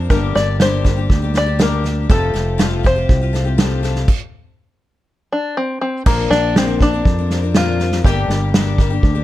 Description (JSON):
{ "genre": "indie folk with a building arrangement", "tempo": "121 BPM", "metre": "4/4", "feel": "straight", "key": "unclear", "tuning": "A4 = 440 Hz", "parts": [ { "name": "open-back banjo", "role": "melody", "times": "0.0-8.8 s", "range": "Bb3 to D5", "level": "-20 LUFS", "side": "left 1 dB", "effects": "none" }, { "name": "picked twelve-string acoustic guitar", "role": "accompaniment", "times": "0.0-9.2 s", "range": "G2 to Bb4", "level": "-23 LUFS", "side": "left 7 dB", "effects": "none" }, { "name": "fingered electric bass", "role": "bass", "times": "0.0-9.2 s", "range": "F1 to F2", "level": "-19 LUFS", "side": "equal", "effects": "none" }, { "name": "unplugged drum kit", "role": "drums", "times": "0.1-9.1 s", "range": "crash cymbal, kick drum, snare drum", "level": "-16 LUFS", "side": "right 1 dB", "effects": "none" } ], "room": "light reverb", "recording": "dark, warm production", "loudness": "-14 LUFS", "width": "side -15 dB against mid", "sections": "0.0-6.1 A section; 6.1-9.2 A section", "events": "stop 4.1-6.1", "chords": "0.1 Gm; 2.1 Fadd9; 6.1 Bbadd9; 8.0 Gm" }